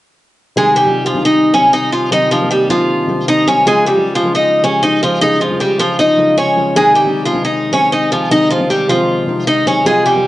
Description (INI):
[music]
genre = hip hop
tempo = 155 BPM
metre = 4/4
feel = half-time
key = C phrygian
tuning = A4 = 439 Hz
[part]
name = picked acoustic archtop guitar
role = melody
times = 0.6-10.3 s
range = F3 to Eb5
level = -11 LUFS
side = equal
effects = cassette tape
[part]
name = felt-muted upright piano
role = accompaniment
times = 0.6-10.3 s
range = C3 to Ab4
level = -18 LUFS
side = left 2 dB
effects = cassette tape
[sound]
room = wet spring reverb, RT60 2.3 s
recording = home recording on cassette, nothing above 11.0 kHz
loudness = -11 LUFS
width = side -16 dB against mid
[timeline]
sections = 0.6-10.3 A section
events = none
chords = 0.6 Cm; 3.7 Db; 6.8 Ab